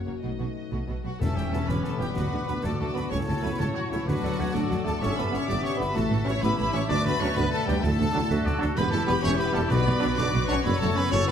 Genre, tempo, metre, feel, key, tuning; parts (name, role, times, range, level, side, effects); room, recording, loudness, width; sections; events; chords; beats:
cinematic, heroic adventure film score; 127 BPM (dotted quarters); 12/8; straight; E dorian; A4 = 442 Hz
rich symphonic violin section; melody; 0.0-11.3 s; E4 to D#5; -39 LUFS; left 2 dB
mellow French horn section; sustained chords; 0.0-11.3 s; E3 to F#4; -33 LUFS; left 5 dB
concert harp; arpeggios; 0.0-11.3 s; F#2 to D6; -35 LUFS; left 12 dB
warm symphonic violin section; second line; 0.1-11.3 s; F#4 to D6; -34 LUFS; left 1 dB
warm symphonic viola section; accompaniment; 0.1-11.3 s; A3 to D5; -35 LUFS; left 1 dB
warm studio double bass section; bass; 0.1-11.2 s; E1 to D2; -32 LUFS; right 2 dB
warm symphonic cello section; bass; 0.1-11.2 s; D2 to D3; -33 LUFS; right 2 dB
clear trumpet; stabs; 1.0-11.3 s; E4 to D5; -34 LUFS; right 2 dB
clear oboe; second line; 1.2-11.3 s; A4 to E5; -38 LUFS; right 2 dB
mellow silver concert flute; second line; 1.2-11.3 s; C#6 to A6; -38 LUFS; left 2 dB
warm clarinet; second line; 1.2-11.3 s; B3 to G4; -38 LUFS; equal
mellow tuba; bass; 1.2-11.2 s; E1 to D2; -34 LUFS; right 5 dB
concert snare drum, clash cymbals and concert bass drum; drums; 1.2-11.3 s; -34 LUFS; equal
timpani; percussion; 1.2-1.7, 9.7-10.1 s; E2 to B2; -32 LUFS; left 2 dB
clear trombone section; sustained chords; 1.5-11.0 s; D3 to D4; -35 LUFS; right 4 dB
light reverb; close, detailed microphones; -23 LUFS; side -8 dB against mid
0.0-1.2 A section; 1.2-11.3 B section
0.2 B7; 1.2 Em; 2.2 Bm7/D; 3.1 F#m/C#; 4.1 D; 5.0 G; 6.0 A; 6.9 D; 8.8 Em; 9.7 Bm; 10.7 F#m7
0.23 0.72 | 1.21 1.69 2.17 2.64 | 3.12 3.60 4.07 4.55 | 5.02 5.49 5.96 6.43 | 6.90 7.37 7.84 8.31 | 8.78 9.24 9.71 10.18 | 10.65 11.12